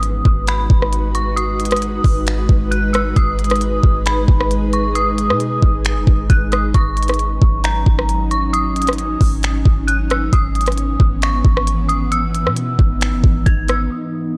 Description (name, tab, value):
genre	hip hop, atmospheric cloud-rap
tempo	134 BPM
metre	4/4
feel	half-time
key	G# minor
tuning	A4 = 440 Hz
part	dark detuned synth bell	melody	0.0-14.4 s	A#5 to G#6	-24 LUFS	equal	chorus, tremolo, low-pass filter, delay
part	ethereal airy pad	sustained chords	0.0-14.4 s	G#2 to B4	-25 LUFS	equal	ensemble chorus, built-in reverb, sidechain pumping, low-pass filter
part	clean 808-style bass	bass	0.0-13.9 s	F#1 to B2	-20 LUFS	equal	none
part	trap drum kit	drums	0.0-13.8 s	finger snaps, hi-hat, kick drum, rim click	-20 LUFS	equal	vintage 12-bit sampler grit
room	digital ambience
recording	none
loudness	-16 LUFS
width	mono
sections	0.0-13.9 A section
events	none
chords	0.0 G#m7; 6.7 D#m7/G#; 10.3 C#m7/G#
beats	0.03 0.48 0.93 | 1.37 1.82 2.27 2.72 | 3.16 3.61 4.06 4.51 | 4.96 5.40 5.85 6.30 | 6.75 7.19 7.64 8.09 | 8.54 8.98 9.43 9.88 | 10.33 10.78 11.22 11.67 | 12.12 12.57 13.01 13.46 | 13.91 14.36